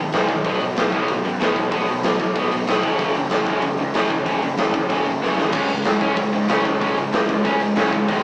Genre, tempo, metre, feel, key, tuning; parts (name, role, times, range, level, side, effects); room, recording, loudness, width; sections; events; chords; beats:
punk rock; 189 BPM; 4/4; straight; A4 = 440 Hz
tight distorted guitar; riff; 0.0-8.2 s; F#2 to C#4; -26 LUFS; equal; distortion
fuzz picked electric bass; bass; 0.0-8.2 s; F#1 to G#2; -30 LUFS; equal; overdrive
big rock drum kit; drums; 0.1-8.2 s; crash cymbal, hi-hat, kick drum, snare drum; -23 LUFS; equal
overdriven electric guitar; riff; 5.5-8.2 s; G#2 to C#4; -27 LUFS; equal
light reverb; rough rehearsal-room recording, warm saturation, small speaker sound; -20 LUFS; mono
0.0-8.2 A section
drum fill 5.2-5.5
0.5 B5; 2.8 F#5; 5.5 C#5
0.14 | 0.46 0.77 1.09 1.41 | 1.73 2.05 2.36 2.68 | 3.00 3.32 3.64 3.96 | 4.27 4.59 4.91 5.23 | 5.55 5.86 6.18 6.50 | 6.82 7.14 7.45 7.77 | 8.09